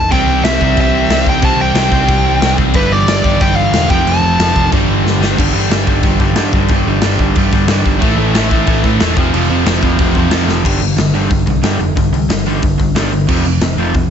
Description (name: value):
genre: punk rock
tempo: 182 BPM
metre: 4/4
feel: straight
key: unclear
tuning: A4 = 438 Hz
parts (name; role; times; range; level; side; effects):
- bluesy overdriven lead guitar; melody; 0.0-4.7 s; B4 to A5; -16 LUFS; equal; distortion
- overdriven picked electric bass; bass; 0.0-14.1 s; E1 to A2; -18 LUFS; left 1 dB; none
- crunchy overdriven guitar; riff; 0.1-14.1 s; F2 to C4; -17 LUFS; right 12 dB; none
- distorted electric guitar; riff; 0.1-14.1 s; F2 to C4; -19 LUFS; left 13 dB; distortion
- high-gain distorted guitar; riff; 0.1-5.4, 8.0-10.5 s; F2 to C4; -21 LUFS; equal; distortion
- big rock drum kit; drums; 0.1-14.0 s; crash cymbal, hi-hat, kick drum, snare drum; -15 LUFS; left 1 dB; none
room: light reverb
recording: nothing above 7.9 kHz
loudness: -10 LUFS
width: side -8 dB against mid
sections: 0.0-5.4 A section; 5.4-10.6 B section; 10.6-14.1 C section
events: drum fill 5.1-5.4, 10.5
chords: 0.1 C; 2.7 G5; 3.9 F; 4.7 G5; 8.0 A5; 9.2 F5; 10.6 G5; 13.3 F5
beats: | 0.11 0.44 0.77 1.10 | 1.43 1.76 2.09 2.42 | 2.75 3.08 3.41 3.74 | 4.07 4.39 4.72 5.05 | 5.38 5.71 6.04 6.37 | 6.70 7.03 7.36 7.69 | 8.02 8.35 8.67 9.00 | 9.33 9.66 9.99 10.32 | 10.65 10.98 11.31 11.64 | 11.97 12.30 12.62 12.95 | 13.28 13.61 13.94